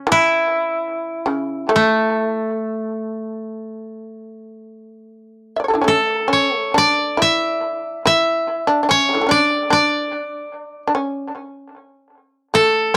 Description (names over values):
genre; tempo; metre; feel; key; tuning
japanese traditional, Japanese chamber music; 65-76 BPM; 4/4; rubato; A ryukyu; A4 = 440 Hz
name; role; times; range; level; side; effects
koto; melody; 0.0-13.0 s; A3 to E5; -20 LUFS; equal; none
shamisen; second line; 0.0-13.0 s; C#3 to E5; -23 LUFS; equal; analog delay
room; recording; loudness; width
moderate small room ambience, RT60 0.5 s; dry, gritty hardware recording, transformer saturation, cassette tape; -18 LUFS; mono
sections
0.0-6.8 A section; 6.8-13.0 B section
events
none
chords
none